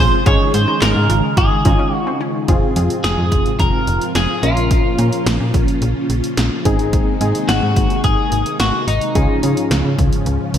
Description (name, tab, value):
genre	synth-pop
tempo	108 BPM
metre	4/4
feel	straight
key	unclear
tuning	A4 = 440 Hz
part	twelve-string electric guitar	melody	0.0-9.7 s	Eb4 to Db5	-20 LUFS	left 1 dB	lush chorus, digital delay
part	warm analog keys	accompaniment	0.0-10.4 s	C4 to Bb4	-22 LUFS	left 1 dB	chorus
part	string machine, violas	sustained chords	0.0-10.6 s	Ab2 to Ab4	-21 LUFS	equal	phaser, ensemble chorus
part	analog pluck	arpeggios	0.0-2.4 s	C4 to F4	-28 LUFS	left 1 dB	chorus, digital delay
part	slap-like FM bass	bass	0.0-10.6 s	F1 to Db3	-18 LUFS	equal	none
part	punchy analog drum machine	drums	0.3-10.6 s	handclaps, hi-hat, kick drum, snare drum	-18 LUFS	equal	gated reverb
room	light reverb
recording	bright 1980s-style digital production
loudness	-14 LUFS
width	side -9 dB against mid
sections	0.0-2.5 A section; 2.5-10.6 B section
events	break 1.9-2.5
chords	0.3 Absus4; 2.5 Fm; 4.4 Bbm; 6.7 Abadd9; 9.2 Db